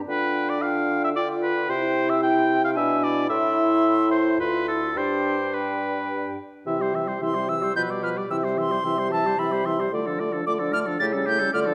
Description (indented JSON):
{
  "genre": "quick classical-period movement for wind quintet",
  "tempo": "111 BPM",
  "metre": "3/4",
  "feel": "straight",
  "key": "C major",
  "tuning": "A4 = 440 Hz",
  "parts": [
    { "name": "silver concert flute", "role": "melody", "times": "0.1-11.6 s", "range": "G5 to A6", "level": "-32 LUFS", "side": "equal", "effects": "none" },
    { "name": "warm oboe", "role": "second line", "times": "0.1-11.7 s", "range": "G4 to G5", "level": "-28 LUFS", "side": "equal", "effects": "none" },
    { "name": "dark clarinet", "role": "accompaniment", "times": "0.1-11.7 s", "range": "C#4 to G4", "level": "-32 LUFS", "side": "equal", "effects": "none" },
    { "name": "warm French horn", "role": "accompaniment", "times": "0.1-11.7 s", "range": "E3 to F4", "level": "-31 LUFS", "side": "equal", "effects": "none" },
    { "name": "warm bassoon", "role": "bass", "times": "0.1-11.7 s", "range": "D2 to D3", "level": "-30 LUFS", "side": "equal", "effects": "none" }
  ],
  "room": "moderate scoring stage reverb, RT60 1.5 s",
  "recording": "dark, warm production",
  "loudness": "-24 LUFS",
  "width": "mono",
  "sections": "0.0-6.7 A section; 6.7-11.7 B section",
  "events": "none",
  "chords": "0.1 G5/D; 1.7 C; 2.8 E7/B; 3.3 Am; 4.4 Dm7; 5.0 G; 6.7 C; 7.8 G7/B; 8.3 C; 9.9 Dm; 11.0 A7/C#"
}